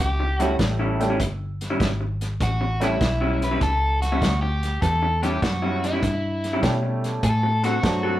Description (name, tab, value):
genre	electric blues shuffle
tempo	99 BPM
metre	4/4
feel	swing 68% on 8ths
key	A mixolydian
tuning	A4 = 438 Hz
part	overdriven electric guitar	melody	0.0-8.2 s	E4 to B4	-26 LUFS	equal	spring reverb
part	vintage muted fingered electric bass	bass	0.0-8.2 s	G1 to B2	-24 LUFS	equal	none
part	warm soul drum kit	drums	0.0-8.0 s	hi-hat, kick drum, snare drum	-26 LUFS	equal	none
part	electric guitar through a small old amp	riff	0.2-8.2 s	A2 to A4	-26 LUFS	left 1 dB	none
part	warm upright piano	accompaniment	0.4-3.0, 6.6-8.2 s	F#3 to G4	-26 LUFS	right 2 dB	none
room	moderate studio reverb, RT60 0.5 s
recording	rough rehearsal-room recording, tube saturation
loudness	-20 LUFS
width	side -13 dB against mid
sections	0.0-8.2 A section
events	none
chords	0.0 A7; 7.2 D7